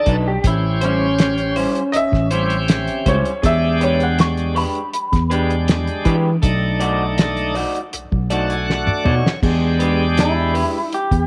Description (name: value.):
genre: straight-eighth soul blues.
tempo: 80 BPM.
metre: 4/4.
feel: straight.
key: unclear.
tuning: A4 = 440 Hz.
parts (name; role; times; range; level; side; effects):
electric guitar through a small old amp; melody; 0.0-11.3 s; C#4 to C#6; -24 LUFS; equal; none.
bright tonewheel organ; accompaniment; 0.0-10.6 s; G#3 to A5; -26 LUFS; equal; slow rotary speaker, overdrive.
electric guitar through a small old amp; stabs; 0.1-10.8 s; F#3 to D5; -28 LUFS; equal; none.
overdriven tine electric piano; bass; 0.1-11.3 s; A1 to E3; -22 LUFS; equal; none.
cloth-damped thuddy drum kit; drums; 0.1-11.3 s; crash cymbal, hi-hat, kick drum, snare drum, toms; -22 LUFS; equal; none.
bright upright piano; second line; 1.9-3.8 s; C#5 to E5; -24 LUFS; equal; none.
room: moderate echo chamber reverb, RT60 2.2 s.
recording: none.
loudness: -18 LUFS.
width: mono.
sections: 0.0-9.4 A section; 9.4-11.3 B section.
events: tonewheel organ fill 7.9-9.4; drum fill 8.7-9.4; clean electric guitar solo 9.4-11.3.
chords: 0.4 A7#9; 3.4 E7#9; 6.4 B7#9; 9.4 E7#9.